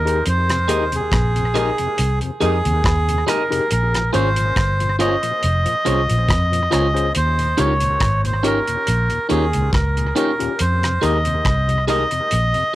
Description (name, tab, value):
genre	lovers rock reggae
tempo	70 BPM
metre	4/4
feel	swing 55% on 16ths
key	F minor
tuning	A4 = 441 Hz
part	melodica	melody	0.0-12.8 s	Ab4 to Eb5	-20 LUFS	right 1 dB	tape echo
part	vintage muted fingered electric bass	bass	0.0-12.5 s	F1 to F2	-20 LUFS	equal	none
part	overdriven tine electric piano	accompaniment	0.1-12.0 s	Db4 to C5	-26 LUFS	left 6 dB	analog delay
part	damped 70s drum kit	drums	0.1-12.7 s	hi-hat, kick drum, rim click	-23 LUFS	equal	analog delay
part	tonewheel organ	accompaniment	0.5-12.6 s	Eb2 to Ab4	-30 LUFS	left 4 dB	overdrive, chorus vibrato, slow rotary speaker, analog delay
part	electric guitar at the edge of break-up	stabs	0.7-12.0 s	Eb4 to Eb5	-22 LUFS	right 6 dB	none
room	light reverb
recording	home recording on cassette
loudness	-16 LUFS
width	side -15 dB against mid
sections	0.0-12.8 A section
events	none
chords	0.0 Fm11; 3.7 Bbm7; 7.1 Eb7; 10.6 Fm11